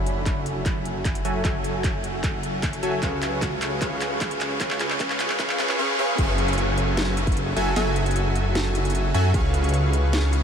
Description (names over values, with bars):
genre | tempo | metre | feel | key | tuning
future bass | 152 BPM | 4/4 | half-time | F# minor | A4 = 441 Hz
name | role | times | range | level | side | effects
supersaw stab | riff | 0.0-10.4 s | F#3 to C#6 | -25 LUFS | equal | sidechain pumping, low-pass filter, diffuse ambient delay
wide detuned saw bass | bass | 0.0-10.4 s | F#1 to F#2 | -26 LUFS | equal | chorus, sidechain pumping
trap drum kit | drums | 0.1-10.4 s | crash cymbal, handclaps, hi-hat, snare drum | -28 LUFS | equal | none
electronic kick drum | drums | 0.3-9.4 s | none | -27 LUFS | equal | overdrive
room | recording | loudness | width
wet huge ambient reverb, RT60 8.1 s | dreamy mix soaked in reverb, high-pass filter | -21 LUFS | side -8 dB against mid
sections
0.0-6.2 A section; 6.2-10.4 B section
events
build-up 0.0-6.2; drum fill 0.0-5.8; filter sweep on supersaw synth 0.0-6.2; filter sweep 0.0-6.2; drop 6.2-10.4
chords
0.0 F#m7; 3.0 C#7; 6.2 F#m7; 9.3 C#7